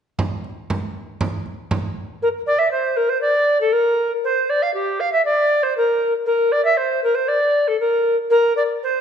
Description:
medieval dance; 118 BPM; 2/4; straight; A4 = 440 Hz
frame drum; percussion; 0.2-1.9 s; -24 LUFS; right 2 dB
reedy bass recorder; melody; 2.2-9.0 s; G4 to F5; -16 LUFS; equal
wet recital hall reverb, RT60 1.4 s; nothing above 10.6 kHz; -17 LUFS; side -8 dB against mid
0.2-2.2 A section; 2.2-9.0 B section
| 0.18 0.69 | 1.20 1.71 | 2.22 2.73 | 3.24 3.75 | 4.25 4.76 | 5.27 5.78 | 6.29 6.79 | 7.30 7.81 | 8.32 8.83

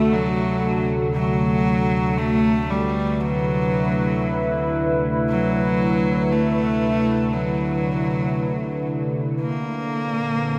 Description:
ambient; free time; A4 = 440 Hz
rich cello; melody; 0.0-10.6 s; F#3 to Bb3; -26 LUFS; equal; tape echo
warbly tape-like pad; sustained chords; 0.0-10.6 s; Bb2 to B4; -24 LUFS; equal; chorus, built-in reverb
deep rumbling drone; bass; 0.0-10.6 s; Bb1 to D2; -38 LUFS; equal; built-in reverb
wet huge ambient reverb, RT60 8.6 s; -21 LUFS; mono
0.0-10.6 A section
fade-in on synth drone 0.0-10.6
0.0 D7; 9.4 Bbmaj9
free time

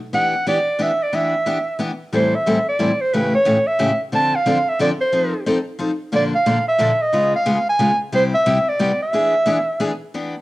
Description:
jazz; 180 BPM; 3/4; swing 60% on 8ths; A minor; A4 = 440 Hz
clear clarinet; melody; 0.1-10.0 s; B4 to A5; -17 LUFS; right 1 dB; plate reverb
picked steel-string acoustic guitar; accompaniment; 0.1-10.3 s; A2 to A4; -21 LUFS; left 2 dB; cassette tape
wet small room reverb, RT60 0.6 s; home recording on cassette; -16 LUFS; side -18 dB against mid
0.0-2.1 A section; 2.1-10.1 B section
0.1 Em7; 2.1 Am7; 3.1 A7; 4.1 Dm7; 5.1 F7; 6.1 Bbmaj7; 7.1 C#7; 8.1 Cmaj7; 9.1 E7
| 0.14 0.47 0.80 | 1.13 1.47 1.80 | 2.13 2.46 2.80 | 3.13 3.46 3.80 | 4.13 4.46 4.79 | 5.13 5.46 5.79 | 6.13 6.46 6.79 | 7.13 7.46 7.80 | 8.13 8.46 8.80 | 9.13 9.46 9.80 | 10.13

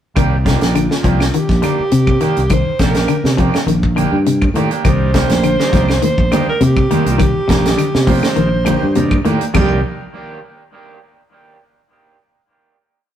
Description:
afrobeat; 102 BPM; 4/4; swing 53% on 16ths; C minor; A4 = 441 Hz
clean electric guitar; arpeggios; 0.2-9.7 s; C3 to F3; -19 LUFS; left 6 dB; harmonic tremolo
electric guitar at the edge of break-up; stabs; 0.2-9.8 s; Eb3 to G4; -23 LUFS; right 5 dB; tape echo
fingered electric bass; bass; 0.2-9.8 s; Bb1 to C3; -17 LUFS; equal
tight funk drum kit; drums; 0.2-9.7 s; crash cymbal, hi-hat, kick drum, snare drum; -18 LUFS; equal
claves; percussion; 0.2-9.7 s; -29 LUFS; left 1 dB
bright alto saxophone; melody; 0.5-9.8 s; F4 to C5; -20 LUFS; right 2 dB
combo organ; accompaniment; 4.8-9.8 s; Eb3 to D4; -25 LUFS; right 3 dB; spring reverb
congas; percussion; 5.2-9.7 s; -21 LUFS; right 2 dB
moderate stone room reverb, RT60 1.5 s; rough rehearsal-room recording; -12 LUFS; side -10 dB against mid
0.2-9.5 groove; 9.5-11.9 final chord
0.2 Cm9
| 0.17 0.75 1.34 1.93 | 2.51 3.10 3.69 4.27 | 4.86 5.44 6.03 6.62 | 7.20 7.79 8.37 8.96 | 9.54

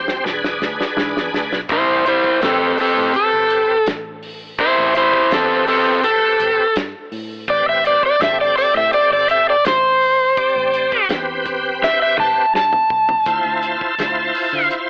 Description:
straight-eighth soul blues; 83 BPM; 4/4; straight; A minor; A4 = 440 Hz
bright tonewheel organ; accompaniment; 0.0-14.9 s; C4 to D5; -21 LUFS; equal; slow rotary speaker, overdrive, chorus vibrato
vintage muted fingered electric bass; bass; 0.0-14.7 s; E1 to D3; -36 LUFS; equal
warm soul drum kit; drums; 0.1-14.9 s; hi-hat, kick drum, snare drum, toms; -25 LUFS; equal
electric guitar with an envelope filter; stabs; 1.0-1.2 s; E3 to B4; -27 LUFS; equal
overdriven slide guitar; melody; 1.7-14.7 s; C4 to A5; -14 LUFS; equal
light reverb, small room reverb; telephone sound; -14 LUFS; side -38 dB against mid
0.0-1.7 A section; 1.7-14.9 B section
drum fill 0.0-1.7, 11.8-13.3; electric slide guitar solo 1.7-14.9
0.2 E7; 1.7 Am9; 13.3 Dm9
0.24 0.97 | 1.69 2.42 3.14 3.86 | 4.59 5.31 6.03 6.76 | 7.48 8.20 8.93 9.65 | 10.37 11.10 11.82 12.54 | 13.26 13.99 14.71

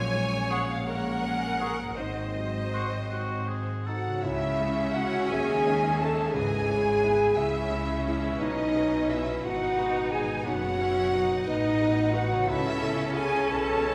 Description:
cinematic, emotional film score for orchestra; 52-60 BPM (dotted quarters); 6/8; rubato; A4 = 440 Hz
rich chamber violin section; melody; 0.0-13.9 s; Ab4 to A5; -40 LUFS; equal
rich chamber violin section; second line; 0.0-13.9 s; G#4 to A5; -39 LUFS; equal
clear symphonic viola section; accompaniment; 0.0-13.9 s; E3 to Db5; -38 LUFS; equal
felt-muted upright piano; accompaniment; 0.0-13.9 s; B1 to E5; -38 LUFS; equal
warm French horn section; sustained chords; 0.0-13.9 s; Gb3 to A4; -31 LUFS; equal
concert harp; arpeggios; 0.0-13.9 s; Ab2 to Db5; -42 LUFS; equal
rich symphonic cello section; bass; 0.0-13.9 s; F#2 to D#3; -39 LUFS; equal
rich symphonic double bass section; bass; 0.0-13.9 s; F#1 to D#2; -37 LUFS; equal
silver concert flute; second line; 0.5-13.9 s; D#5 to Db6; -37 LUFS; equal
warm oboe; second line; 0.5-4.2 s; Gb4 to A4; -40 LUFS; equal
wet recital hall reverb, RT60 1.8 s; recorded in a church or concert hall; -27 LUFS; mono
0.0-4.2 A section; 4.2-13.9 B section
0.0 Gbadd9/Bb; 2.0 Ab7; 4.2 C#m; 8.4 B; 12.5 Aadd9
0.86 | 1.98 3.11 | 4.23 5.29 | 6.34 7.37 | 8.41 9.44 | 10.46 11.46 | 12.49 13.50

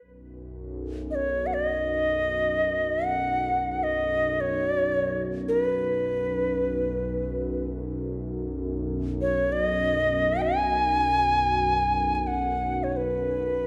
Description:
world meditative, free-time meditation music; free time; B major pentatonic; A4 = 440 Hz
evolving wavetable pad; drone; 0.2-13.7 s; B1 to F#2; -33 LUFS; equal; chorus, built-in reverb
bright reedy Native American-style cedar flute; melody; 1.1-13.7 s; B4 to G#5; -26 LUFS; equal; diffuse ambient delay
wet recital hall reverb, RT60 1.3 s, small room ambience; -26 LUFS; mono
0.0-13.7 A section
free time

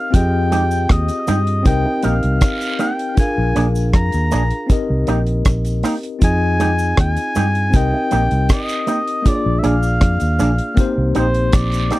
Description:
lovers rock reggae; 79 BPM; 4/4; straight; A4 = 440 Hz
warm oboe; melody; 0.0-12.0 s; C5 to Bb5; -22 LUFS; equal; tape echo
tine electric piano; accompaniment; 0.0-12.0 s; Bb3 to F5; -22 LUFS; left 3 dB; medium stereo tremolo
vintage muted fingered electric bass; bass; 0.1-11.9 s; Bb1 to G2; -18 LUFS; equal
deep reggae drum kit; drums; 0.1-12.0 s; hi-hat, kick drum, rim click; -15 LUFS; equal
cabasa and guiro; percussion; 0.1-12.0 s; -33 LUFS; right 4 dB
electric guitar with an envelope filter; stabs; 0.5-12.0 s; Ab3 to Ab4; -20 LUFS; right 3 dB
little or no reverb; dry, close 1970s-style studio recording; -14 LUFS; side -18 dB against mid
0.0-12.0 A section
0.1 Fm9; 1.7 Cm7; 3.2 Bb7; 4.7 Cm7; 6.2 Fm9; 7.7 Cm7; 9.3 Bb7; 10.8 Cm7
| 0.14 0.90 1.66 2.42 | 3.18 3.94 4.70 5.46 | 6.22 6.98 7.74 8.50 | 9.26 10.02 10.78 11.54

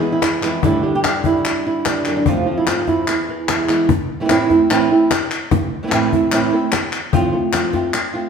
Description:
flamenco; 148 BPM; 4/4; straight; A4 = 440 Hz
flamenco guitar; melody; 0.0-8.3 s; E2 to G#4; -17 LUFS; right 2 dB
flamenco guitar; stabs; 0.0-3.9 s; F2 to G4; -22 LUFS; right 1 dB
cajon; percussion; 0.2-8.1 s; -22 LUFS; left 6 dB
palmas hand claps; percussion; 0.2-8.1 s; -23 LUFS; left 3 dB
wet large studio reverb, RT60 1.2 s; band playing live in one room; -15 LUFS; side -6 dB against mid
0.0-3.9 A section; 3.9-8.3 B section
drum fill 3.7
0.0 E; 0.6 Gsus2; 2.3 F; 3.1 E; 3.9 Am; 7.1 F/A
0.22 | 0.63 1.04 1.45 1.86 | 2.26 2.67 3.08 3.48 | 3.89 4.30 4.70 5.11 | 5.51 5.92 6.32 6.73 | 7.13 7.53 7.94

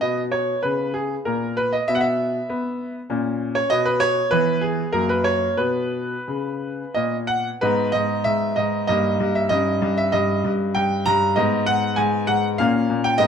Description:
classical-period piano sonatina; 97 BPM; 3/4; rubato; B major, G# minor from 7.6 s; A4 = 440 Hz
clear concert grand piano; solo; 0.0-13.3 s; F#2 to A#5; -19 LUFS; equal
moderate recital hall reverb, RT60 1.2 s; close, detailed microphones; -19 LUFS; side -7 dB against mid
0.0-7.6 A section; 7.6-13.3 B section
0.0 Bmaj9; 1.9 N.C.; 3.1 A#m; 3.7 N.C.; 4.3 E; 4.9 F#; 5.6 Bmaj7sus2; 7.6 G#m; 8.9 D#/G; 9.5 D#7/G; 11.4 G#m; 12.6 A#m6
| 0.02 0.64 1.27 | 1.89 2.50 3.10 | 3.71 4.32 4.94 | 5.59 6.28 6.96 | 7.61 8.25 8.88 | 9.51 10.13 10.75 | 11.37 11.97 12.59 | 13.19

